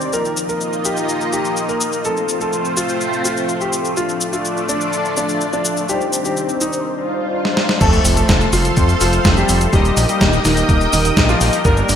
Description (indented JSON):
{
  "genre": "italo disco",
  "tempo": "125 BPM",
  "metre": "4/4",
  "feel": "straight",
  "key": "unclear",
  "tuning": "A4 = 440 Hz",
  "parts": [
    { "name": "warm grand piano", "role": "melody", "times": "0.0-11.9 s", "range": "Eb3 to Bb4", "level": "-21 LUFS", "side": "equal", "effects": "ping-pong delay" },
    { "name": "lush unison pad", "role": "sustained chords", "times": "0.0-12.0 s", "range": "Eb3 to Eb6", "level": "-22 LUFS", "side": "right 1 dB", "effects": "chorus, phaser" },
    { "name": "analog synth brass", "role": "stabs", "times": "0.0-12.0 s", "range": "F3 to Eb5", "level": "-22 LUFS", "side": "left 3 dB", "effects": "chorus" },
    { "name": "clean 12-bit digital drum machine", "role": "drums", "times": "0.0-12.0 s", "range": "cabasa, crash cymbal, hi-hat, snare drum", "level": "-20 LUFS", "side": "left 1 dB", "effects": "gated reverb" },
    { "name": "swell and sub drop", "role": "sound effects", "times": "7.1-9.7 s", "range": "none", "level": "-24 LUFS", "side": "right 1 dB", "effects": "none" },
    { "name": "fat analog bass", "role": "bass", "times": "7.8-12.0 s", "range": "Eb1 to F2", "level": "-17 LUFS", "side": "equal", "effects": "none" },
    { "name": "electronic kick drum", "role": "drums", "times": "7.8-11.7 s", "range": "none", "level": "-16 LUFS", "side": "right 1 dB", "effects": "none" }
  ],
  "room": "moderate lush hall reverb, RT60 2.4 s",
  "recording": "bright 1980s-style digital production",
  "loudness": "-14 LUFS",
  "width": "side -8 dB against mid",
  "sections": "0.0-7.8 A section; 7.8-12.0 B section",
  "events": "filter sweep on drum 0.0-7.8; filter sweep on analog polysynth 0.0-7.8; swell 7.1-7.8; drum fill 7.5-7.8; impact 7.8-9.7",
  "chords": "0.1 Ebsus2; 2.1 F; 4.0 Dm; 5.9 Cmadd9; 7.8 F; 9.7 Eb"
}